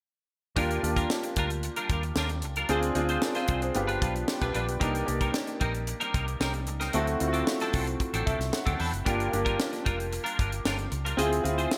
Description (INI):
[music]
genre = polished 1980s jazz-funk pop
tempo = 113 BPM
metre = 4/4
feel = straight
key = Eb major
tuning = A4 = 440 Hz
[part]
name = clear concert grand piano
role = accompaniment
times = 0.6-11.8 s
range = A3 to Cb6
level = -33 LUFS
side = equal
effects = analog chorus
[part]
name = clean electric guitar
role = riff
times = 0.6-11.8 s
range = F#3 to C5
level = -36 LUFS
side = equal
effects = ensemble chorus
[part]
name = vintage muted fingered electric bass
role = bass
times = 0.6-11.7 s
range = F1 to Fb2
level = -35 LUFS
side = equal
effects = none
[part]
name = tight funk drum kit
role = drums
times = 0.6-11.8 s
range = hi-hat, kick drum, snare drum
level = -34 LUFS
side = equal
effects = gated reverb
[sound]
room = moderate plate reverb, RT60 1.7 s, studio reverb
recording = bright 1980s-style digital production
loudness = -29 LUFS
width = mono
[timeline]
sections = 0.6-11.8 A section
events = grand piano fill 8.0-9.1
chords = 0.6 Ebmaj9; 2.7 Dm7b5; 3.8 G7; 4.8 Cm7; 6.9 D7; 9.1 Gm7; 11.2 Dm7b5